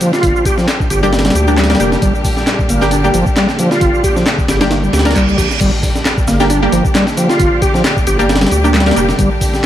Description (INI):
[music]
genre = breakbeat, breaks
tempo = 134 BPM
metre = 4/4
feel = swing 55% on 16ths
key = G minor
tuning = A4 = 439 Hz
[part]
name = rich studio string section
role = sustained chords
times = 0.0-9.7 s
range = Bb2 to G4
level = -20 LUFS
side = equal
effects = sidechain pumping
[part]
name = bright tonewheel organ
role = riff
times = 0.0-9.3 s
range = F3 to G4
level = -16 LUFS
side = equal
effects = chorus vibrato, fast rotary speaker, dub echo
[part]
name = breakbeat sampler-style drum kit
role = drums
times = 0.0-9.7 s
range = crash cymbal, hi-hat, kick drum, snare drum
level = -16 LUFS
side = equal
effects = studio ambience
[part]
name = electronic shaker and handclaps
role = drums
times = 0.0-9.6 s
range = none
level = -23 LUFS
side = equal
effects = studio ambience
[part]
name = saturated sub bass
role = bass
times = 0.2-9.3 s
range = F1 to D2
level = -16 LUFS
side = equal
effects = tube saturation
[part]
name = orchestra-hit-like synth stab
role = stabs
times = 1.0-9.1 s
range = G3 to Bb4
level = -17 LUFS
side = equal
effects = built-in reverb, dub echo
[part]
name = reverse cymbal and impact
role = sound effects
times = 4.9-7.4 s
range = none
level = -24 LUFS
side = right 2 dB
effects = none
[sound]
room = light reverb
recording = vinyl crackle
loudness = -10 LUFS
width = side -11 dB against mid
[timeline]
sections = 0.0-5.6 A section; 5.6-9.7 B section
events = reverse cymbal 4.9-5.6; drop 5.6-9.7; impact 5.6-7.4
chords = 0.0 Gm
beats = | 0.23 0.68 1.13 1.58 | 2.02 2.47 2.92 3.37 | 3.82 4.26 4.71 5.16 | 5.61 6.05 6.50 6.95 | 7.40 7.85 8.29 8.74 | 9.19 9.64